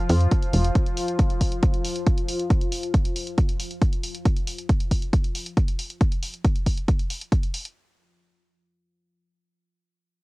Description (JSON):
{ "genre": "driving peak-time techno", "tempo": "137 BPM", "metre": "4/4", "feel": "straight", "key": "unclear", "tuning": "A4 = 440 Hz", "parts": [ { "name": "deep dark ambient pad", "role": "drone", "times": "0.0-4.3 s", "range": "F3 to F4", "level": "-31 LUFS", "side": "left 2 dB", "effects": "chorus, built-in reverb, sidechain pumping" }, { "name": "tight sequencer bass", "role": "bass", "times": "0.1-0.7 s", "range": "F1 to F2", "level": "-17 LUFS", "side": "equal", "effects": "sidechain pumping" }, { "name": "electronic hi-hat", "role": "drums", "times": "0.1-7.7 s", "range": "none", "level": "-34 LUFS", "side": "equal", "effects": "sidechain pumping on hats" }, { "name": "electronic kick drum", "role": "drums", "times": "0.3-7.4 s", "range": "none", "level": "-21 LUFS", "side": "equal", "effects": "overdrive" } ], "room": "little or no reverb", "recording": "home recording on cassette", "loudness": "-21 LUFS", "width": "side -22 dB against mid", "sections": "0.0-7.8 A section; 7.8-10.2 B section", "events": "none", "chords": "none", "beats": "0.31 | 0.75 1.19 1.63 2.06 | 2.50 2.94 3.38 3.82 | 4.25 4.69 5.13 5.57 | 6.01 6.44 6.88 7.32" }